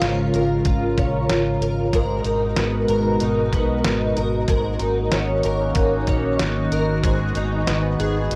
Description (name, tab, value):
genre	dream pop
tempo	94 BPM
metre	4/4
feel	straight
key	G# dorian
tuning	A4 = 440 Hz
part	phased analog pad	sustained chords	0.0-8.4 s	B2 to A#4	-26 LUFS	equal	phaser, chorus
part	picked twelve-string acoustic guitar	arpeggios	0.0-8.4 s	G#2 to A#4	-25 LUFS	equal	ensemble chorus, tape echo
part	vintage muted fingered electric bass	bass	0.0-8.4 s	G#1 to B1	-28 LUFS	equal	none
part	detuned 8-bit digital drum machine	drums	0.0-8.4 s	hi-hat, kick drum, snare drum	-26 LUFS	equal	none
room	light reverb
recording	dry, gritty hardware recording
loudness	-21 LUFS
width	mono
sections	0.0-8.4 A section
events	none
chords	0.0 A#m7/G#; 1.9 G#m9; 4.5 D#m7/G#; 7.0 B6/G#